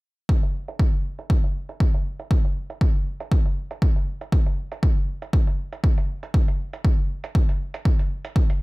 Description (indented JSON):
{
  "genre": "house",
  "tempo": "119 BPM",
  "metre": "4/4",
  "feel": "swing 56% on 16ths",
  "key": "none",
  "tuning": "none",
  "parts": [
    { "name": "electronic kick drum", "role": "drums", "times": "0.3-8.5 s", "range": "none", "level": "-20 LUFS", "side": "equal", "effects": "overdrive, studio reverb" },
    { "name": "electronic hi-hat", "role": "drums", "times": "0.4-8.6 s", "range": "none", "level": "-38 LUFS", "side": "right 4 dB", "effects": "overdrive, low-pass filter on hats, studio reverb" }
  ],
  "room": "digital ambience",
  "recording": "none",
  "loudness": "-21 LUFS",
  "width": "side -24 dB against mid",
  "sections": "0.3-8.6 A section",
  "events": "filter sweep on drum 0.3-8.6",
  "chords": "none",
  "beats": "| 0.29 0.80 1.30 1.80 | 2.31 2.81 3.32 3.82 | 4.32 4.83 5.33 5.84 | 6.34 6.84 7.35 7.85 | 8.36"
}